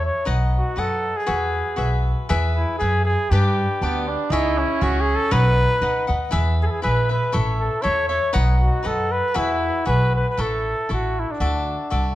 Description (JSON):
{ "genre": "mexican folk, mariachi", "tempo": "119 BPM", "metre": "2/4", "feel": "straight", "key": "E major", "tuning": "A4 = 440 Hz", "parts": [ { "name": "mellow trumpet", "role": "melody", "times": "0.0-12.1 s", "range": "D4 to C#5", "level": "-23 LUFS", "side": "equal", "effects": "none" }, { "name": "cavaquinho", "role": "accompaniment", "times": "0.0-12.2 s", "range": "D4 to F#5", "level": "-26 LUFS", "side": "left 2 dB", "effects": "none" }, { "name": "upright bass", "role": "bass", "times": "0.0-12.2 s", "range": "A1 to G2", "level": "-21 LUFS", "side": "equal", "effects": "none" }, { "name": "mellow trumpet", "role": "second line", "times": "3.8-5.6 s", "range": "B3 to D#4", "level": "-25 LUFS", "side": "right 4 dB", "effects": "none" } ], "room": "moderate recital hall reverb, RT60 1.5 s", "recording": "dark, warm production", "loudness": "-18 LUFS", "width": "side -14 dB against mid", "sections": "0.0-2.3 A section; 2.3-10.4 A section; 10.4-12.2 B section", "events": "none", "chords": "0.3 B; 1.3 Eadd9; 2.3 E; 3.3 G; 4.3 C#m; 5.3 B; 6.3 E; 7.3 A; 8.3 B; 9.4 Eadd9; 10.4 A; 11.4 Dadd9" }